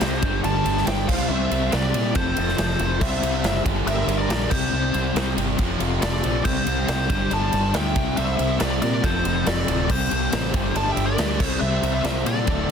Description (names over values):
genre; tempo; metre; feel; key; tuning
hard rock; 140 BPM; 4/4; straight; unclear; A4 = 440 Hz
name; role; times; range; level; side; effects
nasal lead guitar with a parked wah; melody; 0.0-12.7 s; C5 to A5; -27 LUFS; left 3 dB; overdrive, tape echo
lead guitar through a small cranked amp; second line; 0.0-12.7 s; G4 to E5; -34 LUFS; right 3 dB; overdrive, tape echo
crunchy overdriven guitar; riff; 0.0-12.7 s; D2 to C4; -29 LUFS; right 12 dB; phaser
crunchy overdriven guitar; riff; 0.0-12.7 s; D2 to C4; -30 LUFS; equal; none
overdriven semi-hollow guitar; riff; 0.0-12.7 s; D2 to C4; -29 LUFS; left 14 dB; tremolo
fingered electric bass; bass; 0.0-12.7 s; D1 to Bb2; -26 LUFS; equal; none
big rock drum kit; drums; 0.0-12.6 s; crash cymbal, kick drum, ride cymbal, snare drum; -26 LUFS; equal; none
room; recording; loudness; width
studio ambience; dense, heavily limited modern master; -20 LUFS; side -7 dB against mid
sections
0.0-12.7 A section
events
none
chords
0.2 G5; 1.1 C; 2.2 F; 3.0 C; 3.7 Gm; 4.5 C5; 5.6 F; 6.4 C5; 7.1 G5; 8.0 C; 9.0 F; 9.9 C5; 10.5 Gm; 11.4 C5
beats
0.01 0.44 0.87 | 1.29 1.72 2.15 2.58 | 3.01 3.44 3.87 4.30 | 4.73 5.16 5.59 6.02 | 6.45 6.88 7.31 7.74 | 8.17 8.60 9.03 9.46 | 9.89 10.32 10.75 11.18 | 11.62 12.05 12.48